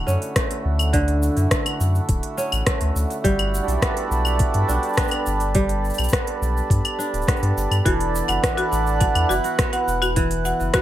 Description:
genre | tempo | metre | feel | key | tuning
folktronica | 104 BPM | 4/4 | straight | G lydian | A4 = 439 Hz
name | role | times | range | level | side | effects
mellow accordion | sustained chords | 0.0-10.8 s | D3 to F#5 | -26 LUFS | right 2 dB | none
kora | arpeggios | 0.0-10.8 s | D3 to F#4 | -27 LUFS | right 1 dB | digital delay
warm sub bass | bass | 0.0-10.7 s | D1 to G2 | -22 LUFS | equal | none
organic electronic drum kit | drums | 0.1-10.8 s | claves, hi-hat, rim click, shaker | -26 LUFS | left 1 dB | none
electronic kick drum | drums | 0.4-10.8 s | none | -23 LUFS | equal | overdrive
marimba with hard mallets | second line | 7.9-10.8 s | F#4 to F#5 | -25 LUFS | equal | digital delay
room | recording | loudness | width
light reverb | none | -18 LUFS | side -13 dB against mid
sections
0.0-10.8 A section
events
none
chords
0.0 Dmaj7; 3.2 Gmaj7; 7.9 Esus2

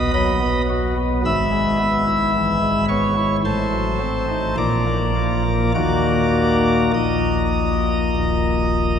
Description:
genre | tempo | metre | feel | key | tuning
classical, chorale-style piece for pipe organ | 50-56 BPM | 4/4 | rubato | unclear | A4 = 439 Hz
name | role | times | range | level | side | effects
pipe organ, cornet | solo | 0.0-9.0 s | Eb1 to E6 | -17 LUFS | left 1 dB | none
room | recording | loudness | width
wet cathedral reverb, RT60 7.5 s | recorded in a church or concert hall | -17 LUFS | side -8 dB against mid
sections
0.0-9.0 A section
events
none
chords
0.0 B; 1.3 E/G#; 3.4 Adim7; 4.6 Bb; 5.8 Ebm

